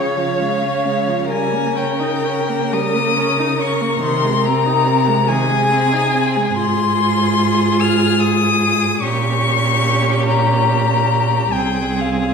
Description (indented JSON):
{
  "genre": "classical, slow romantic movement for string quartet",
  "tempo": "40-50 BPM (dotted quarters)",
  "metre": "6/8",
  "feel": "rubato",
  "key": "Ab major, F minor from 6.6 s",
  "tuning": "A4 = 440 Hz",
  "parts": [
    { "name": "dark violin", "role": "melody", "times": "0.0-12.3 s", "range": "F5 to F6", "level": "-18 LUFS", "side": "left 6 dB", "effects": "none" },
    { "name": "rich violin", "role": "second line", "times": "0.0-12.3 s", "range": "G4 to Db5", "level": "-22 LUFS", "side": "left 1 dB", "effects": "none" },
    { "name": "rich viola", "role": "accompaniment", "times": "0.0-12.3 s", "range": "Db3 to F4", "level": "-22 LUFS", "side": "right 2 dB", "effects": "none" },
    { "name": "rich cello", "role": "bass", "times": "0.0-12.3 s", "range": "C2 to Db3", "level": "-20 LUFS", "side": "right 3 dB", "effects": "none" }
  ],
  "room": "wet recital hall reverb, RT60 1.3 s",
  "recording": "heard from further back in the room",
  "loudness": "-14 LUFS",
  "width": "side -6 dB against mid",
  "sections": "0.0-12.3 A section",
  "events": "none",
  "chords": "0.0 Db; 1.3 Eb7/Db; 4.0 Ab/C; 6.6 Fm/Ab; 9.0 Gdim/Bb; 11.5 Fm/C",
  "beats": "| 1.30 2.73 | 4.03 5.29 | 6.58 7.81 | 9.03 10.27 | 11.55"
}